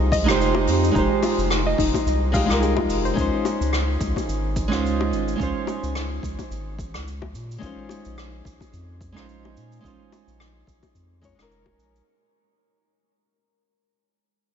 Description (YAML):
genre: sunset chillout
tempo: 108 BPM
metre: 4/4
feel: swing 56% on 16ths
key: unclear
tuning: A4 = 440 Hz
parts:
  - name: nylon-string guitar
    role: accompaniment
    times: 0.0-12.1 s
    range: Ab3 to Eb5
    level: -24 LUFS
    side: moving between left 4 dB and right 6 dB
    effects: auto-pan, tape echo
  - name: round analog bass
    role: bass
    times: 0.0-12.0 s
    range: F1 to Bb2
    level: -26 LUFS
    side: equal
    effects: none
  - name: soft round pluck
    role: arpeggios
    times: 0.1-3.2 s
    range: Eb4 to F5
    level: -27 LUFS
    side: left 3 dB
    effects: chorus, tape echo
  - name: electronic kick drum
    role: drums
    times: 0.1-11.8 s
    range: none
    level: -29 LUFS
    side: equal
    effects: overdrive
  - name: soft brush drum kit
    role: drums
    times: 0.1-12.0 s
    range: cabasa, hi-hat, rim click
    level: -31 LUFS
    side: left 1 dB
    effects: none
  - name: bongos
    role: percussion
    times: 0.5-11.8 s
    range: none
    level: -33 LUFS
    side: left 5 dB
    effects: none
room: moderate cathedral reverb, RT60 5.6 s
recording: dreamy mix soaked in reverb, nothing above 7.6 kHz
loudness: -20 LUFS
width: side -8 dB against mid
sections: 0.0-12.1 A section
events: fade-out 0.0-12.1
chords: 0.0 Fm9; 3.2 Dbmaj7; 7.3 Bbm11